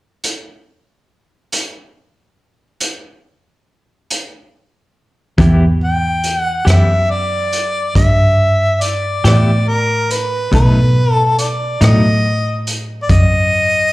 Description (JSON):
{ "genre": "slow blues", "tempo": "47 BPM (dotted quarters)", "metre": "12/8", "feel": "straight", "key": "unclear", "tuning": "A4 = 440 Hz", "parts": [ { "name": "raw garage drum kit", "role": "drums", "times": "0.2-13.3 s", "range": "hi-hat, kick drum, rim click", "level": "-19 LUFS", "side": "equal", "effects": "none" }, { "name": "clean electric guitar", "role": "accompaniment", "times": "5.4-12.1 s", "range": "B2 to G4", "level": "-17 LUFS", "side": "left 1 dB", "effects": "tremolo, slapback echo" }, { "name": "vintage muted fingered electric bass", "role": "bass", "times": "5.4-13.9 s", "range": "E2 to B2", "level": "-14 LUFS", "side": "equal", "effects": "none" }, { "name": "warm harmonica", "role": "melody", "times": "5.8-13.9 s", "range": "A#4 to G5", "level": "-16 LUFS", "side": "left 1 dB", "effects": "none" } ], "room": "studio reverb", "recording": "live gig heard through the venue's PA, club reverb", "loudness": "-12 LUFS", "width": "side -18 dB against mid", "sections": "0.2-5.4 A section; 5.4-13.9 B section", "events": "none", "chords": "0.2 N.C.; 5.4 Em; 10.5 B7" }